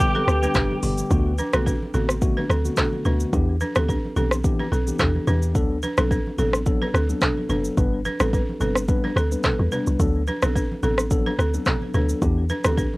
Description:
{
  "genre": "afrobeats",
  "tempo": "108 BPM",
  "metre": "4/4",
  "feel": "swing 55% on 16ths",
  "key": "unclear",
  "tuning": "A4 = 440 Hz",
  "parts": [
    { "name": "direct-recorded clean electric guitar", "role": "melody", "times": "0.0-0.8 s", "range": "G4", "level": "-26 LUFS", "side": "equal", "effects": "ensemble chorus, cassette tape, tape echo, plate reverb" },
    { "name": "mellow tine electric piano", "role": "accompaniment", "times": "0.0-12.9 s", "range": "D3 to B4", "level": "-27 LUFS", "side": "left 2 dB", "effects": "plate reverb" },
    { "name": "glass harmonica", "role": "sustained chords", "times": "0.0-1.1 s", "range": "B4 to D6", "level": "-34 LUFS", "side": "left 2 dB", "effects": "sidechain pumping, plate reverb" },
    { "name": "deep log drum bass", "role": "bass", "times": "0.0-12.8 s", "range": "F#1 to E2", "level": "-23 LUFS", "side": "equal", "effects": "none" },
    { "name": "afro-pop drum kit", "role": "drums", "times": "0.0-12.9 s", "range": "handclaps, hi-hat, kick drum, rim click, shaker", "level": "-22 LUFS", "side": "equal", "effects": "none" },
    { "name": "balafon", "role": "riff", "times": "0.1-12.9 s", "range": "C4 to B4", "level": "-28 LUFS", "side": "right 2 dB", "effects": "tape echo" },
    { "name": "congas", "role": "percussion", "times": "0.2-13.0 s", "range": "none", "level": "-34 LUFS", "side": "equal", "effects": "none" }
  ],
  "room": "light reverb",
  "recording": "home recording on cassette",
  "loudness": "-19 LUFS",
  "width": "side -22 dB against mid",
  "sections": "0.0-1.1 A section; 1.1-13.0 B section",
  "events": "none",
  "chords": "0.0 G; 1.1 D6; 3.3 Em7; 5.6 D6; 7.8 G; 10.0 D6; 12.2 Em7",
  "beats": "0.00 0.55 | 1.11 1.66 2.22 2.77 | 3.33 3.88 4.44 5.00 | 5.55 6.11 6.66 7.22 | 7.77 8.33 8.88 9.44 | 10.00 10.55 11.11 11.66 | 12.22 12.77"
}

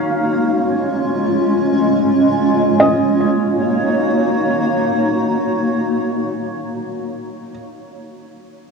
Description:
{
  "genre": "dream pop",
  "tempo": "free time",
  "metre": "none",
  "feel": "none",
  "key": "Eb minor",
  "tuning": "A4 = 441 Hz",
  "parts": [
    { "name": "felt-muted upright piano", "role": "melody", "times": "0.0-7.5 s", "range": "Eb5 to F5", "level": "-21 LUFS", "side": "right 1 dB", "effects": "cassette tape, analog delay" },
    { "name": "granular cloud pad", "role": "sustained chords", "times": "0.0-6.8 s", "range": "Ab3 to Db5", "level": "-16 LUFS", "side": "equal", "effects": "built-in reverb, cassette tape" }
  ],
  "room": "wet small room reverb, RT60 0.5 s",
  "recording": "home recording on cassette",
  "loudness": "-14 LUFS",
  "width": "side -4 dB against mid",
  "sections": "0.0-2.8 A section; 2.8-6.0 B section",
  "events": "slowing down 0.0-2.8",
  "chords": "0.0 Db; 2.8 Ebm7",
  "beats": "free time"
}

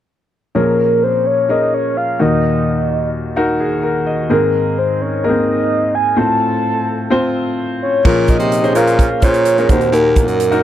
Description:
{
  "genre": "piano-driven pop",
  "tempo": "128 BPM",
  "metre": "4/4",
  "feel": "straight",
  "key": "Bb minor",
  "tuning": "A4 = 439 Hz",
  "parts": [
    { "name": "clear concert grand piano", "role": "accompaniment", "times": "0.5-10.6 s", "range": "Eb2 to Eb5", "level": "-16 LUFS", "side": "left 1 dB", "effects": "none" },
    { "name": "soft octave-layered synth lead", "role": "melody", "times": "0.6-10.6 s", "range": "Bb4 to A5", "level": "-16 LUFS", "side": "equal", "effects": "chorus, phaser" },
    { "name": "breathy baritone saxophone", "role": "bass", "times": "8.1-10.6 s", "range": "Eb2 to C3", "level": "-17 LUFS", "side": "right 1 dB", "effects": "none" },
    { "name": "natural country drum kit", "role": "drums", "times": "8.1-10.6 s", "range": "crash cymbal, hi-hat, kick drum", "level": "-15 LUFS", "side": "right 1 dB", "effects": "none" }
  ],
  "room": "light reverb",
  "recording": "dry, close 1970s-style studio recording",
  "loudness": "-13 LUFS",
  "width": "side -11 dB against mid",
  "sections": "0.6-8.1 A section; 8.1-10.6 B section",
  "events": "none",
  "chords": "0.6 Bbm7; 2.2 Ebm; 4.3 Abadd9; 6.2 F/A; 8.1 Bbm7; 9.7 Ebm",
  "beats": "| 0.55 1.02 1.49 1.96 | 2.43 2.90 3.37 3.83 | 4.30 4.77 5.24 5.71 | 6.18 6.65 7.12 7.58 | 8.05 8.52 8.99 9.46 | 9.93 10.40"
}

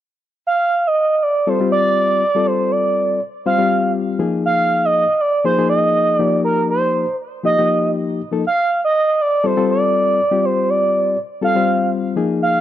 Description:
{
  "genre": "jazz",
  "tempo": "120 BPM",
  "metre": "4/4",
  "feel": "swing 54% on 16ths",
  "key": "G phrygian",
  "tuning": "A4 = 438 Hz",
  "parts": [
    { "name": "expressive synth lead", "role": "melody", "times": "0.5-12.6 s", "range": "Bb4 to F5", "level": "-16 LUFS", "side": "right 2 dB", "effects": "chorus" },
    { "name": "bright reed electric piano", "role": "accompaniment", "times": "1.5-12.6 s", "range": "F3 to C5", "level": "-19 LUFS", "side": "left 5 dB", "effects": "none" }
  ],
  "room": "digital ambience",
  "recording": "dry, close 1970s-style studio recording",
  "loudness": "-15 LUFS",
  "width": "side -11 dB against mid",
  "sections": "0.5-12.6 A section",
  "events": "none",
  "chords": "0.5 G9sus4; 4.2 Bb7sus4; 6.2 F9sus4; 8.4 G9sus4",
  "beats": "| 0.47 0.97 1.47 1.96 | 2.46 2.96 3.45 3.95 | 4.45 4.95 5.44 5.94 | 6.44 6.94 7.44 7.94 | 8.44 8.93 9.43 9.93 | 10.43 10.93 11.43 11.93 | 12.43"
}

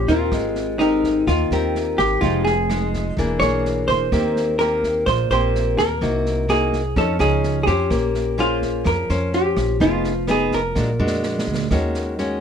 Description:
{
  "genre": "bossa nova",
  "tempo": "126 BPM",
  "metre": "4/4",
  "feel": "straight",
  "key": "Bb dorian",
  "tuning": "A4 = 440 Hz",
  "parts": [
    { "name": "vintage hollow-body jazz guitar", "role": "melody", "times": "0.0-11.4 s", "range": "Eb4 to Db5", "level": "-21 LUFS", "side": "equal", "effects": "none" },
    { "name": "nylon-string guitar", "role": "accompaniment", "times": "0.0-12.4 s", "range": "Bb2 to C5", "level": "-23 LUFS", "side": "left 2 dB", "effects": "none" },
    { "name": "upright bass", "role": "bass", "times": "0.0-12.4 s", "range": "E1 to F2", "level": "-24 LUFS", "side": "right 1 dB", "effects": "none" },
    { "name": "open jazz drum kit", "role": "drums", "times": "0.1-12.2 s", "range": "kick drum, rim click, snare drum", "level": "-29 LUFS", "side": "right 1 dB", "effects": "none" }
  ],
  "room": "light reverb",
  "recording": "close, detailed microphones",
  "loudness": "-17 LUFS",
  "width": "side -7 dB against mid",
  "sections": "0.0-11.7 A section",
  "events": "drum fill 10.8-11.7",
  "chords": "0.3 Abmaj9; 2.2 Fm9; 3.2 E7#11; 4.1 Eb6; 6.0 Cm7b5; 7.0 F7alt; 7.9 Bbm9; 9.8 Fm7b5; 10.8 Bb7b13; 11.7 Ebm7",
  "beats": "| 0.32 0.79 1.27 1.74 | 2.22 2.69 3.17 3.64 | 4.12 4.59 5.07 5.54 | 6.02 6.49 6.96 7.44 | 7.91 8.39 8.86 9.34 | 9.81 10.28 10.76 11.23 | 11.71 12.18"
}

